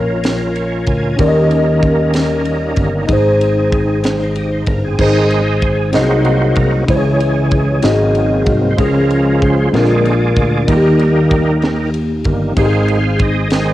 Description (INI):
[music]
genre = slow gospel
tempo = 63 BPM (dotted quarters)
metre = 6/8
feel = straight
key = Ab major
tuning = A4 = 440 Hz
[part]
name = mellow tine electric piano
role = accompaniment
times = 0.0-13.7 s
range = Ab2 to Eb5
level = -14 LUFS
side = left 1 dB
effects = phaser, cassette tape
[part]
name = overdriven tonewheel organ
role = sustained chords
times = 0.0-13.7 s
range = Db3 to Ab5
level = -19 LUFS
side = right 2 dB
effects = slow rotary speaker, chorus vibrato, cassette tape
[part]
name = fingered electric bass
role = bass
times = 0.0-13.7 s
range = G1 to Eb2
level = -19 LUFS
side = equal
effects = tube saturation
[part]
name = crisp fusion drum kit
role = drums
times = 0.2-13.7 s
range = crash cymbal, kick drum, ride cymbal, snare drum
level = -20 LUFS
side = equal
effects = cassette tape
[sound]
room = light reverb, small room ambience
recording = home recording on cassette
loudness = -11 LUFS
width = side -15 dB against mid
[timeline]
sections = 0.0-5.0 A section; 5.0-13.7 A section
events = tonewheel organ fill 0.2-1.2; tonewheel organ solo 5.0-13.7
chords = 0.0 Bbm; 1.2 Eb7; 3.1 Ab; 5.9 Ab7/C; 6.9 Dbm; 7.8 Ab7; 8.8 Db; 9.7 Bb7; 10.7 Eb; 12.6 Ab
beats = 0.25 | 1.20 2.15 | 3.10 4.04 | 4.99 5.94 | 6.89 7.83 | 8.78 9.73 | 10.67 11.62 | 12.57 13.51